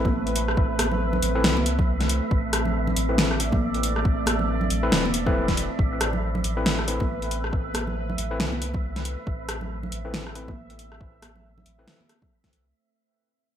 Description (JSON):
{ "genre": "deep dubstep", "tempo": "138 BPM", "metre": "4/4", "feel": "swing 59% on 16ths, half-time", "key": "A minor", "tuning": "A4 = 442 Hz", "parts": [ { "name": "deep dark ambient pad", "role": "sustained chords", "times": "0.0-12.7 s", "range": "A3 to E5", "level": "-31 LUFS", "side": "right 1 dB", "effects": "chorus, built-in reverb, vintage 12-bit sampler grit" }, { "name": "overdriven tine electric piano", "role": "stabs", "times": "0.0-12.0 s", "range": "C4 to B4", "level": "-31 LUFS", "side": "left 3 dB", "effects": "dub echo" }, { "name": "soft dub sub bass", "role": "bass", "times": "0.0-12.7 s", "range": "E1 to C2", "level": "-28 LUFS", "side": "equal", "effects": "none" }, { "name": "electronic kick drum", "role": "drums", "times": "0.0-12.5 s", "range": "none", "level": "-26 LUFS", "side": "equal", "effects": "overdrive" }, { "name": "wind-like tuned noise texture", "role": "texture", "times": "0.0-12.8 s", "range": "E5", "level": "-35 LUFS", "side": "right 4 dB", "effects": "built-in reverb, wide subtle chorus" }, { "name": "congas", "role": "percussion", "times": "0.1-12.3 s", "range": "none", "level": "-32 LUFS", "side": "right 3 dB", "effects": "dub echo" }, { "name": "deep house drum kit", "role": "drums", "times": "0.3-12.6 s", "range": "hi-hat, rim click, snare drum", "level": "-26 LUFS", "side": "equal", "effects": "gated reverb" } ], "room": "light reverb, digital ambience", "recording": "bright 1980s-style digital production", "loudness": "-22 LUFS", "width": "side -9 dB against mid", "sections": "0.0-12.7 A section", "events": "drop 0.0-12.7; fade-out 5.8-12.7", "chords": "0.0 Amadd9" }